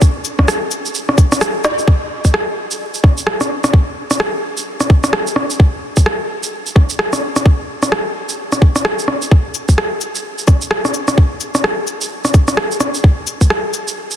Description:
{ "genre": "future garage", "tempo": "129 BPM", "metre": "4/4", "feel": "swing 60% on 16ths", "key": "none", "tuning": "none", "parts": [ { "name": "electronic kick drum", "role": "drums", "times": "0.0-13.5 s", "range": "none", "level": "-9 LUFS", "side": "equal", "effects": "none" }, { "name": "electronic shaker, cabasa, rim click and snare drum", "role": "drums", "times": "0.0-14.2 s", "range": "none", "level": "-17 LUFS", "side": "equal", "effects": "soft clipping on snare" } ], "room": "light reverb", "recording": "dense, heavily limited modern master", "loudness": "-13 LUFS", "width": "side -10 dB against mid", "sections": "0.0-1.9 A section; 1.9-14.2 B section", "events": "drum fill 1.6", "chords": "none", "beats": "| 0.01 0.48 0.94 1.41 | 1.88 2.34 2.81 3.27 | 3.73 4.20 4.67 5.13 | 5.59 6.06 6.53 6.99 | 7.46 7.92 8.39 8.85 | 9.32 9.78 10.25 10.71 | 11.18 11.64 12.11 12.57 | 13.04 13.50 13.97" }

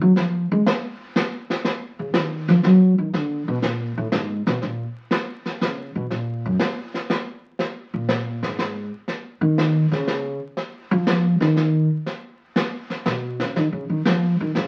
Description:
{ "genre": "jazz piano trio", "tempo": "121 BPM", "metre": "3/4", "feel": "swing 69% on 8ths", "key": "Eb minor", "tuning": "A4 = 440 Hz", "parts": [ { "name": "upright bass", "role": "bass", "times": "0.0-14.7 s", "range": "Gb2 to Ab3", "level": "-22 LUFS", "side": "equal", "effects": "none" }, { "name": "brushed snare drum and snare drum", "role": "drums", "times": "0.2-14.7 s", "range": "none", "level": "-26 LUFS", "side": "equal", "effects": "none" } ], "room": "moderate studio reverb, RT60 0.6 s", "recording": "very old 78 rpm record, vinyl crackle", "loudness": "-22 LUFS", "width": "mono", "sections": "0.0-4.6 A section; 4.6-14.7 A section", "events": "upright bass solo 0.0-14.7", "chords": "none", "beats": "| 0.17 0.66 1.16 | 1.65 2.15 2.64 | 3.13 3.63 4.12 | 4.62 5.11 5.61 | 6.11 6.60 7.10 | 7.59 8.09 8.59 | 9.08 9.58 10.07 | 10.57 11.07 11.57 | 12.06 12.56 13.06 | 13.56 14.05 14.55" }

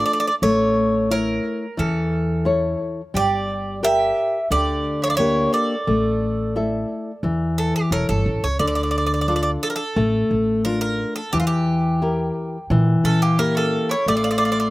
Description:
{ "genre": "greek folk, Greek bouzouki band", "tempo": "88 BPM", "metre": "4/4", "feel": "straight", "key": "D harmonic minor", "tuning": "A4 = 441 Hz", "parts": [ { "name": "Greek bouzouki", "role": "melody", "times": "0.0-14.7 s", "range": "F4 to E5", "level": "-23 LUFS", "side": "right 1 dB", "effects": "none" }, { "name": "nylon-string guitar", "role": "accompaniment", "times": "0.0-14.7 s", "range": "D3 to E5", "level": "-21 LUFS", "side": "left 2 dB", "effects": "none" }, { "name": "upright bass", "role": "bass", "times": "0.4-14.7 s", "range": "E1 to Bb2", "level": "-25 LUFS", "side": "right 1 dB", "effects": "none" }, { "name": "mandolin", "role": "second line", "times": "1.8-7.9, 13.0-14.7 s", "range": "Bb3 to A4", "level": "-28 LUFS", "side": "right 5 dB", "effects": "slapback echo" } ], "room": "little or no reverb", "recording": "recorded outdoors, with no room sound", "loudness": "-18 LUFS", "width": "side -18 dB against mid", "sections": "0.0-8.6 A section; 8.6-14.7 B section", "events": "none", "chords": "0.4 A; 3.1 Gm; 5.9 A; 8.6 Dm; 11.3 Edim; 14.1 N.C.", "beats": "| 0.42 1.10 1.78 2.46 | 3.14 3.83 4.51 5.19 | 5.87 6.55 7.24 7.92 | 8.60 9.29 9.97 10.65 | 11.33 12.02 12.70 13.38 | 14.06" }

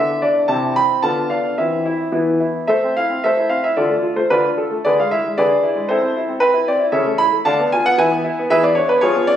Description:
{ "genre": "classical-period piano sonatina", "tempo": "113 BPM", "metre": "2/4", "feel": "rubato", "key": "A minor", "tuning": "A4 = 438 Hz", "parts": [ { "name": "clear grand piano", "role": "solo", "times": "0.0-9.4 s", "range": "C3 to B5", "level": "-15 LUFS", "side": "equal", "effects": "none" } ], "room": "moderate recital hall reverb, RT60 1.4 s", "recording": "recorded on a phone in the room, studio reverb, compression", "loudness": "-15 LUFS", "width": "side -10 dB against mid", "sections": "0.0-2.7 A section; 2.7-9.4 B section", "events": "none", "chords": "0.5 Am/C; 1.0 Bm7b5/D; 1.6 C/E; 2.1 E5; 2.7 Am; 3.8 Dm; 4.8 E7/D; 5.9 Am/C; 6.9 A/C#; 7.5 Bm7b5/D; 8.0 E; 8.5 E7", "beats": "| 0.50 1.03 | 1.57 2.13 | 2.68 3.22 | 3.75 4.29 | 4.83 5.36 | 5.88 6.41 | 6.93 7.46 | 7.98 8.49 | 9.01" }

